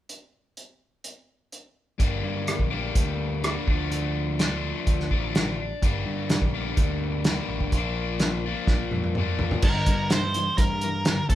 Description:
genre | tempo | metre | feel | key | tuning
classic rock | 126 BPM | 4/4 | straight | G dorian | A4 = 440 Hz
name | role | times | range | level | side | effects
cloth-damped thuddy drum kit | drums | 0.1-11.3 s | crash cymbal, hi-hat, kick drum, rim click, snare drum, toms | -24 LUFS | equal | none
overdriven semi-hollow guitar | riff | 2.0-11.3 s | G2 to D4 | -29 LUFS | left 4 dB | none
growling picked electric bass | bass | 2.0-11.3 s | G1 to G2 | -30 LUFS | right 1 dB | overdrive
octave-fuzz lead guitar | melody | 9.6-11.3 s | A4 to C5 | -27 LUFS | right 1 dB | distortion
room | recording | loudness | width
light reverb | band playing live in one room | -23 LUFS | side -13 dB against mid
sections
0.1-2.0 A section; 2.0-9.6 B section; 9.6-11.3 C section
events
drum fill 8.7-9.6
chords
0.1 N.C.; 2.0 Gm; 3.7 Dm; 5.8 Gm; 7.7 Bb; 9.6 Gm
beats
| 0.09 0.57 1.05 1.52 | 2.00 2.48 2.96 3.44 | 3.92 4.39 4.87 5.35 | 5.83 6.30 6.78 7.25 | 7.73 8.21 8.68 9.16 | 9.63 10.11 10.59 11.06

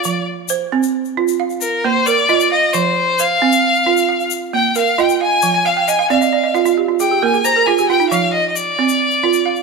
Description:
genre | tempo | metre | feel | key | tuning
west african traditional, West African string and xylophone music | 89 BPM (dotted quarters) | 12/8 | straight | F dorian | A4 = 438 Hz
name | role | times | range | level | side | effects
bright violin | melody | 0.0-9.6 s | Bb4 to Bb5 | -15 LUFS | left 4 dB | none
balafon | arpeggios | 0.0-9.6 s | F3 to Ab5 | -16 LUFS | right 10 dB | none
tube shaker | percussion | 0.0-9.6 s | none | -26 LUFS | left 18 dB | none
room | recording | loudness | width
moderate echo chamber reverb, RT60 2.2 s | 1960s-style stereo with parts hard left and right | -13 LUFS | side -3 dB against mid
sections
0.0-9.6 A section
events
violin solo 0.0-9.6; balafon fill 5.5-8.1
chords
0.0 F5; 1.4 Bb; 2.7 F5; 4.1 Bb5; 5.4 F5; 6.8 Bb5; 8.1 F5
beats
| 0.05 0.72 1.39 2.06 | 2.74 3.41 4.08 4.75 | 5.43 6.10 6.77 7.44 | 8.11 8.79 9.46

